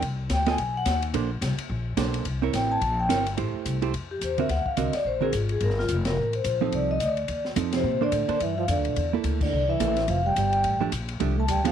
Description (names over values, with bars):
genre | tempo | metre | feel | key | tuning
jazz, small-group swing and bop | 215 BPM | 4/4 | swing 59% on 8ths | F major | A4 = 440 Hz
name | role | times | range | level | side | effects
upright bass | bass | 0.0-11.7 s | F1 to Bb2 | -28 LUFS | left 2 dB | none
open jazz drum kit | drums | 0.0-11.7 s | crash cymbal, hi-hat, kick drum, ride cymbal, snare drum | -34 LUFS | left 2 dB | none
vibraphone with medium mallets | melody | 0.3-11.7 s | F4 to A5 | -26 LUFS | left 2 dB | none
hollow-body jazz guitar | accompaniment | 0.5-11.7 s | D3 to Eb5 | -27 LUFS | right 11 dB | none
breathy trombone | second line | 7.7-11.7 s | C3 to A3 | -30 LUFS | right 11 dB | slapback echo
room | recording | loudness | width
light reverb, studio ambience | 1960s-style stereo | -23 LUFS | side -9 dB against mid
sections
0.0-3.4 A section; 3.4-11.7 B section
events
vibraphone solo 0.0-3.4; band accent 6.0, 7.7, 9.4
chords
0.0 Cmadd9; 0.6 B; 1.1 Bbmaj9; 2.3 C7b9; 3.4 Am7; 4.5 Daug7; 5.6 Gm9; 6.7 F7; 7.8 Bbmaj9; 9.0 C13; 10.1 F69